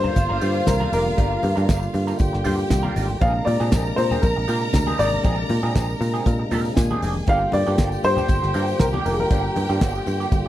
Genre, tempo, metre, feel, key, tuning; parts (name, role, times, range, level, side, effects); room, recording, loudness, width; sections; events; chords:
disco; 118 BPM; 4/4; straight; A4 = 438 Hz
dark baby grand piano; melody; 0.0-9.8 s; Ab4 to F5; -24 LUFS; left 1 dB
warm studio violin section; second line; 0.0-10.5 s; F4 to Bb5; -28 LUFS; equal
electric guitar through a small old amp; accompaniment; 0.0-10.5 s; F3 to C5; -31 LUFS; right 5 dB; wah
percussive tonewheel organ; sustained chords; 0.0-10.5 s; C3 to F4; -29 LUFS; equal; overdrive, slow rotary speaker
picked electric bass; bass; 0.0-10.4 s; F1 to Bb2; -24 LUFS; equal
congas; percussion; 0.0-10.4 s; -31 LUFS; left 3 dB
damped 70s drum kit; drums; 0.2-10.4 s; hi-hat, kick drum, snare drum; -21 LUFS; equal
tambourine; percussion; 0.2-10.4 s; -44 LUFS; left 13 dB
little or no reverb; dry, close 1970s-style studio recording; -18 LUFS; side -13 dB against mid
0.0-10.5 A section
0.0 Gm7; 3.2 Bb9; 7.3 Gm7